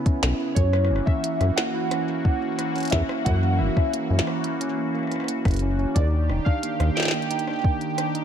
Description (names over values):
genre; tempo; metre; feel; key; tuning
IDM; 89 BPM; 4/4; straight; unclear; A4 = 440 Hz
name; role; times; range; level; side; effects
phased analog pad; sustained chords; 0.0-8.2 s; C#3 to G4; -30 LUFS; equal; phaser, chorus
mellow tine electric piano; arpeggios; 0.0-8.2 s; A#3 to E5; -28 LUFS; right 2 dB; vintage 12-bit sampler grit, tape echo
electronic kick drum; drums; 0.1-7.8 s; none; -22 LUFS; left 1 dB; none
glitchy drum kit; drums; 0.1-8.2 s; hi-hat, rim click, snare drum; -29 LUFS; equal; overdrive
deep acid bass; bass; 0.2-6.9 s; D#1 to F#2; -21 LUFS; left 1 dB; tube saturation
warbly lo-fi synth keys; melody; 0.6-8.2 s; C#5 to G5; -29 LUFS; right 1 dB; chorus, phaser, vintage 12-bit sampler grit
room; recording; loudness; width
light reverb; dark, warm production; -21 LUFS; side -8 dB against mid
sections
0.0-8.2 A section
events
none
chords
0.0 C#m7; 0.6 F#7; 6.0 D#maj7